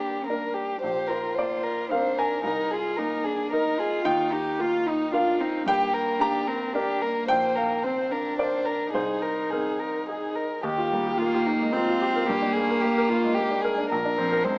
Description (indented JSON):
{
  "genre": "neoclassical piano and strings",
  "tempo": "111 BPM",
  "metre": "3/4",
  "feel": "rubato",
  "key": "Eb major",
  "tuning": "A4 = 440 Hz",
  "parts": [
    { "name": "dark violin", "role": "melody", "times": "0.0-14.6 s", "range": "Eb4 to C5", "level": "-26 LUFS", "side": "left 1 dB", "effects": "none" },
    { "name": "rich cello", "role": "second line", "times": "0.0-14.6 s", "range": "F3 to G4", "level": "-29 LUFS", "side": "equal", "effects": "none" },
    { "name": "clear baby grand piano", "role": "accompaniment", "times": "0.0-14.6 s", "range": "Bb1 to Bb5", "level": "-27 LUFS", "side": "equal", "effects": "none" }
  ],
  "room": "moderate large studio reverb, RT60 1.2 s",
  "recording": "small speaker sound",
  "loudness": "-23 LUFS",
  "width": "side -28 dB against mid",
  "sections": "0.0-10.6 A section; 10.6-14.6 B section",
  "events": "none",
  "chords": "0.0 Gm; 0.8 Bbadd9; 2.4 Abadd9/C; 4.1 Ebadd9; 5.7 Gm; 7.3 Bbadd9; 8.9 Abadd9/C; 10.6 Ebadd9; 12.3 Gm; 13.9 Bbadd9"
}